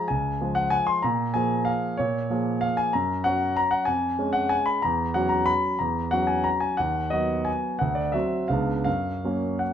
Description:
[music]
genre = classical, piano waltz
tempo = 158-198 BPM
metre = 3/4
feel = rubato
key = F# major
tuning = A4 = 444 Hz
[part]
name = clear concert grand piano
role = solo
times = 0.0-9.7 s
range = Db2 to C6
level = -22 LUFS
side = equal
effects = none
[sound]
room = light reverb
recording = close, detailed microphones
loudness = -22 LUFS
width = side -9 dB against mid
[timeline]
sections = 0.0-9.7 A section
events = none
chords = 0.0 Db; 1.0 Bbm7; 2.9 F#; 3.9 C#/E#; 4.8 F#7/E; 6.8 B/D#; 7.8 D7; 8.5 C#7b9; 8.9 F#

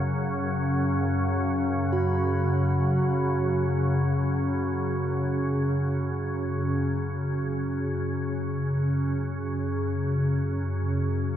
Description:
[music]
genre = dark ambient drone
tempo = free time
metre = none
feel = none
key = unclear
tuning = A4 = 440 Hz
[part]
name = organ-like drone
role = drone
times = 0.0-11.4 s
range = F#2 to C#3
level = -24 LUFS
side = equal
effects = ensemble chorus, built-in reverb
[part]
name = bronze singing bowl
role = texture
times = 1.9-11.0 s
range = F#4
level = -33 LUFS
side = right 3 dB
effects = none
[part]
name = deep dark ambient pad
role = sustained chords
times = 11.2-11.4 s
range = F#4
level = -44 LUFS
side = left 1 dB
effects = none
[sound]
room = wet huge ambient reverb, RT60 8.3 s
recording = dreamy mix soaked in reverb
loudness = -24 LUFS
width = side -10 dB against mid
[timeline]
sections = 0.0-11.0 A section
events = filter sweep on synth drone 0.0-11.0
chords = 0.0 F#5

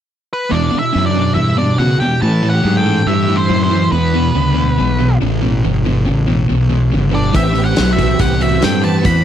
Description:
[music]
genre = blues rock power trio and southern rock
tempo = 140 BPM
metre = 4/4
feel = straight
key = E minor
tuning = A4 = 440 Hz
[part]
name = octave-fuzz lead guitar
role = melody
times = 0.3-9.2 s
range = B4 to B5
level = -19 LUFS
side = equal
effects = distortion, slapback echo
[part]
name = biting lead guitar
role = second line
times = 0.5-9.2 s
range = B3 to C5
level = -23 LUFS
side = right 5 dB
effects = overdrive
[part]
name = fuzz guitar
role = riff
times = 0.5-9.2 s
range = E2 to F#3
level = -16 LUFS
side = equal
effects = distortion
[part]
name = fuzz fingered electric bass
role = bass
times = 0.5-9.2 s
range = G1 to B2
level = -16 LUFS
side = equal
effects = overdrive
[part]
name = overdriven tonewheel organ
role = sustained chords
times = 7.3-9.2 s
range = B3 to G4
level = -24 LUFS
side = right 7 dB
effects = chorus vibrato, slow rotary speaker
[part]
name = big rock drum kit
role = drums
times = 7.3-9.1 s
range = hi-hat, kick drum, snare drum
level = -18 LUFS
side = equal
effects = none
[sound]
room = little or no reverb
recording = dry, close 1970s-style studio recording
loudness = -12 LUFS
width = side -10 dB against mid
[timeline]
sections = 0.5-9.2 A section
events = none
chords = 0.0 N.C.; 0.5 Emadd9; 2.2 A5; 3.9 Em7; 7.3 Am9

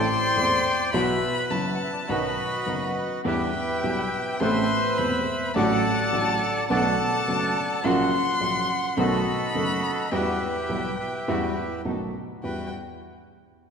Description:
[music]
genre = tango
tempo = 105 BPM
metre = 4/4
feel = rubato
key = E minor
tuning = A4 = 440 Hz
[part]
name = bandoneon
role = melody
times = 0.0-12.7 s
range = F#4 to G5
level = -27 LUFS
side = right 1 dB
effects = none
[part]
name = warm violin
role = second line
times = 0.0-12.7 s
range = G5 to C6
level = -28 LUFS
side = left 3 dB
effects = none
[part]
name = dark grand piano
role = accompaniment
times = 0.0-12.7 s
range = E1 to A4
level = -26 LUFS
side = equal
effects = none
[part]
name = muted studio string section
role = stabs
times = 0.0-12.7 s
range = G3 to A4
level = -34 LUFS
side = right 2 dB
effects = none
[sound]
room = wet concert hall reverb, RT60 2.2 s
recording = minimal, uncompressed stereo recording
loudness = -22 LUFS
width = side -6 dB against mid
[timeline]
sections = 0.0-12.4 A section; 12.4-13.7 B section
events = none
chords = 0.0 Am; 0.9 Bsus4; 2.1 B; 3.2 Em7; 4.4 Amadd9; 5.5 D/A; 6.7 Bm7; 7.8 F#/A#; 9.0 B7; 10.1 Emadd9; 11.8 B7; 12.4 Emadd9

